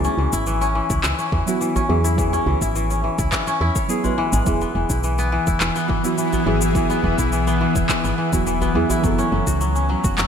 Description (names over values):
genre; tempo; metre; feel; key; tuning
organic downtempo; 105 BPM; 4/4; straight; unclear; A4 = 441 Hz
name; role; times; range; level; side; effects
deep mellow chord stab; accompaniment; 0.0-10.3 s; F#3 to B4; -25 LUFS; right 3 dB; chorus, sidechain pumping, ping-pong delay
kora; arpeggios; 0.0-10.3 s; E3 to C#5; -23 LUFS; left 2 dB; ping-pong delay
woody FM bass; bass; 0.0-10.3 s; E1 to E2; -22 LUFS; equal; sidechain pumping
electronic shaker and handclaps; drums; 0.0-10.3 s; none; -27 LUFS; left 2 dB; overdrive, gated reverb
djembe; percussion; 0.0-10.0 s; none; -29 LUFS; right 1 dB; none
electronic kick drum; drums; 0.3-10.2 s; none; -24 LUFS; equal; overdrive
bowed-like drone; sustained chords; 5.3-10.3 s; E3 to F#5; -24 LUFS; equal; built-in reverb, sidechain pumping
room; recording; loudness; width
moderate lush hall reverb, RT60 2.2 s; bright 1980s-style digital production; -17 LUFS; side -7 dB against mid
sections
0.0-10.3 A section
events
none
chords
0.0 C#m; 4.5 E; 9.0 F#m